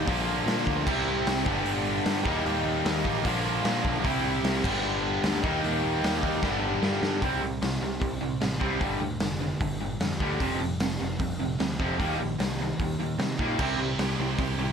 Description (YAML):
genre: punk rock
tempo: 151 BPM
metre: 4/4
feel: straight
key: unclear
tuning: A4 = 442 Hz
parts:
  - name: cranked stack guitar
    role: riff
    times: 0.0-14.7 s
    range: F2 to Eb4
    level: -31 LUFS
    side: right 13 dB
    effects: overdrive
  - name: distorted electric guitar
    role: riff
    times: 0.0-7.2, 13.6-14.7 s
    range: G2 to G4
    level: -32 LUFS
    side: right 1 dB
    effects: overdrive
  - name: overdriven semi-hollow guitar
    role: riff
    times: 0.0-14.7 s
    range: F2 to F4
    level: -31 LUFS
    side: left 11 dB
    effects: none
  - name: growling picked electric bass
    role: bass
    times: 0.0-14.7 s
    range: F1 to C3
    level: -33 LUFS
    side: equal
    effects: overdrive
  - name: raw garage drum kit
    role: drums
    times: 0.1-14.5 s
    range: crash cymbal, hi-hat, kick drum, snare drum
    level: -31 LUFS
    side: equal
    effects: none
room: light reverb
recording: none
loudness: -25 LUFS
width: side -7 dB against mid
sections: 0.0-7.2 A section; 7.2-14.7 B section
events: drum fill 6.4-7.2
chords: 0.1 Bb; 0.9 C; 1.5 G; 2.3 Eb; 3.2 Bb; 4.0 C; 4.6 G; 5.4 Eb; 6.4 G; 7.2 C5; 8.8 G5; 10.4 F5; 12.0 Eb; 13.6 C